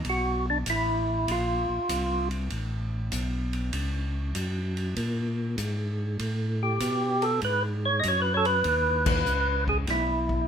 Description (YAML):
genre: soul jazz organ trio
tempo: 98 BPM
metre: 4/4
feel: swing 68% on 8ths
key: unclear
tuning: A4 = 441 Hz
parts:
  - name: tonewheel organ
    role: bass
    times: 0.0-10.5 s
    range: A1 to B2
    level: -28 LUFS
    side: equal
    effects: overdrive, chorus vibrato, slow rotary speaker
  - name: swinging big-band drum kit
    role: drums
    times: 0.0-10.4 s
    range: crash cymbal, hi-hat, kick drum, ride cymbal, snare drum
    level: -35 LUFS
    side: left 1 dB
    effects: none
  - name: percussive tonewheel organ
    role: melody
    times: 0.1-2.3, 6.6-10.5 s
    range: D4 to D#5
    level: -25 LUFS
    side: right 1 dB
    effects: slow rotary speaker, overdrive
room: moderate club reverb, RT60 0.7 s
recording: minimal, uncompressed stereo recording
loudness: -25 LUFS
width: side -8 dB against mid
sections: 0.0-10.5 A section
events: band accent 9.0-9.3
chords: 0.0 D69 (rootless); 1.3 A#sus2; 2.5 A6; 5.0 G#sus2; 6.2 Asus2; 7.4 G#m7; 9.9 Asus2 (rootless)